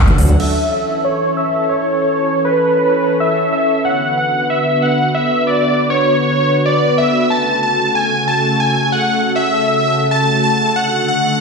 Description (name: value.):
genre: uplifting trance.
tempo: 139 BPM.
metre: 4/4.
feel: straight.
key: unclear.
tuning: A4 = 437 Hz.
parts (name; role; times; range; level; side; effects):
big-room dance drum kit; drums; 0.1-0.5 s; crash cymbal, hi-hat, toms; -21 LUFS; equal; overdrive.
supersaw chords; melody; 0.4-11.4 s; B4 to A5; -15 LUFS; equal; low-pass filter, digital delay.
room: wet digital room reverb, RT60 1.1 s.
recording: played on a big sound system in a bare room, stone room reverb.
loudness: -13 LUFS.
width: side -4 dB against mid.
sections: 0.4-11.4 A section.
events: filter sweep on supersaw synth 0.4-11.4.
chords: none.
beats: | 0.40 0.83 1.26 1.69 | 2.13 2.56 2.99 3.42 | 3.85 4.28 4.72 5.15 | 5.58 6.01 6.44 6.87 | 7.31 7.74 8.17 8.60 | 9.03 9.46 9.89 10.33 | 10.76 11.19.